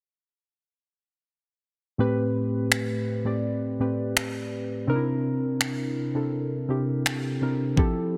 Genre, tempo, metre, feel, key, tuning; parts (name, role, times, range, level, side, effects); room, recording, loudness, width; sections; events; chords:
contemporary R&B; 83 BPM; 4/4; straight; A minor; A4 = 441 Hz
muted felt-like synth keys; accompaniment; 2.0-8.2 s; A2 to D5; -28 LUFS; equal; chorus
smooth R&B drum kit; drums; 2.7-7.9 s; finger snaps, kick drum; -27 LUFS; equal; soft clipping on snare
light reverb; dense, heavily limited modern master; -27 LUFS; mono
2.0-8.2 A section
2.0 Am9; 4.9 C7